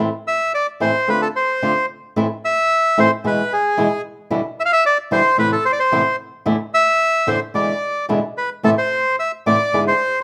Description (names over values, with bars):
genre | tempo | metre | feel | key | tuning
tango | 111 BPM | 4/4 | rubato | A harmonic minor | A4 = 438 Hz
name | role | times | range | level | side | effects
flamenco guitar | accompaniment | 0.0-9.9 s | E2 to G#4 | -22 LUFS | equal | none
bandoneon | melody | 0.3-10.2 s | G#4 to F5 | -19 LUFS | equal | none
room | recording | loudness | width
light reverb | none | -18 LUFS | mono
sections
0.0-10.2 A section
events
none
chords
0.0 Am; 1.1 Dm7; 2.2 Am; 3.2 E; 4.3 Em7; 5.4 Amadd9; 6.5 E7sus4; 7.5 E7; 8.6 Amadd9; 9.7 E7/G#